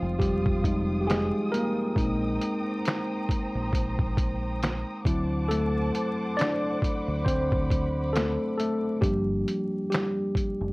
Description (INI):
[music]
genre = lo-fi hip hop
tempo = 68 BPM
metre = 4/4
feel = swing 57% on 16ths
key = unclear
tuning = A4 = 440 Hz
[part]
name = tine electric piano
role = accompaniment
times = 0.0-10.7 s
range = F3 to D5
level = -27 LUFS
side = equal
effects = overdrive, cassette tape, low-pass filter
[part]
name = warm studio string section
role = sustained chords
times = 0.0-9.0 s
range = F4 to Eb6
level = -36 LUFS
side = right 1 dB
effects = low-pass filter
[part]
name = deep dub fingered electric bass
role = bass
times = 0.0-10.7 s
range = F1 to D2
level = -30 LUFS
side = equal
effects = none
[part]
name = lo-fi sampler-style drum kit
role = drums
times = 0.2-10.6 s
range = finger snaps, hi-hat, kick drum, snare drum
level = -28 LUFS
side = equal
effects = none
[sound]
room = light reverb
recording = worn, warbling old tape, cassette tape, vinyl crackle, warbly pitch drift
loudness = -24 LUFS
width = side -23 dB against mid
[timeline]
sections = 0.0-10.7 A section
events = tine electric piano solo 0.0-10.7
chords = 0.0 Fm9; 2.0 Bb9sus4; 5.1 D7; 9.0 Gm7